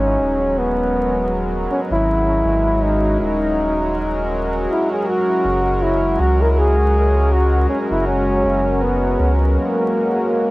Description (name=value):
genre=ambient dub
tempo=80 BPM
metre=4/4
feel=swing 56% on 16ths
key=unclear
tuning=A4 = 439 Hz
part: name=mellow trombone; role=melody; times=0.0-10.5 s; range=A#3 to A#4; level=-18 LUFS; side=equal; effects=vintage 12-bit sampler grit, cassette tape, dub echo
part: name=warm analog pad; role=sustained chords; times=0.0-10.5 s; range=F#3 to A#4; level=-22 LUFS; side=equal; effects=chorus, cassette tape
part: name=warm sub bass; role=bass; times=0.0-9.6 s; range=D#1 to C#2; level=-20 LUFS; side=equal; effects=tube saturation
room=light reverb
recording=home recording on cassette, vinyl crackle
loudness=-15 LUFS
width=side -19 dB against mid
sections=0.0-10.5 A section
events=none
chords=0.0 G#7(no3); 5.1 F#